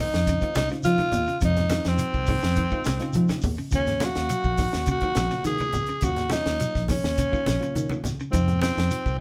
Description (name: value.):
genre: afrobeat.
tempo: 104 BPM.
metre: 4/4.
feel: straight.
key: Eb dorian.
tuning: A4 = 440 Hz.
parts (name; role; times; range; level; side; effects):
raspy tenor saxophone; melody; 0.0-9.2 s; C4 to Ab4; -29 LUFS; equal; none.
clean electric guitar; arpeggios; 0.0-9.1 s; C3 to Gb3; -37 LUFS; equal; none.
fingered electric bass; bass; 0.0-9.2 s; Bb1 to F3; -29 LUFS; equal; none.
tight funk drum kit; drums; 0.1-9.2 s; hi-hat, kick drum, snare drum; -32 LUFS; equal; none.
shekere; percussion; 0.1-9.2 s; none; -38 LUFS; equal; none.
congas; percussion; 0.3-9.1 s; none; -34 LUFS; equal; none.
reed electric piano; accompaniment; 0.4-9.2 s; Gb3 to F5; -39 LUFS; equal; medium tremolo.
room: wet studio reverb, RT60 0.6 s.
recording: band playing live in one room.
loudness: -24 LUFS.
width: mono.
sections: 0.0-9.2 A section.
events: none.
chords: 0.0 Fm7; 3.7 Ebm9; 8.3 Fm7.